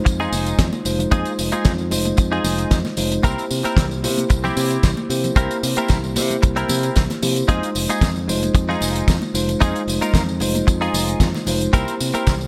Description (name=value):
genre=nu-disco, nu disco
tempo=113 BPM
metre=4/4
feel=straight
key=F minor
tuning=A4 = 440 Hz
part: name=bell-like tine electric piano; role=accompaniment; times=0.0-12.5 s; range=Ab3 to C5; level=-26 LUFS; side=equal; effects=sidechain pumping, low-pass filter, delay
part: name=direct-recorded clean electric guitar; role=riff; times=0.1-12.3 s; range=C4 to Bb4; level=-27 LUFS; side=equal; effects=analog chorus, low-pass filter, delay
part: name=modern bright fingered electric bass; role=bass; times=0.1-12.5 s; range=F1 to C3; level=-27 LUFS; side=equal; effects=none
part: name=damped 70s drum kit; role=drums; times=0.1-12.5 s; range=hi-hat, snare drum, tambourine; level=-27 LUFS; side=equal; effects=gated reverb
part: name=kick drum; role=drums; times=0.1-12.4 s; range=none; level=-19 LUFS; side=equal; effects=none
part: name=congas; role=percussion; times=0.2-12.2 s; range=none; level=-34 LUFS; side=equal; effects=none
room=light reverb, studio reverb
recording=bright 1980s-style digital production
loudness=-19 LUFS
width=mono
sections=0.0-12.5 A section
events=filter sweep on tine electric piano 0.0-12.5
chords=0.0 Fm7; 3.2 C7; 7.5 Fm7; 11.7 C7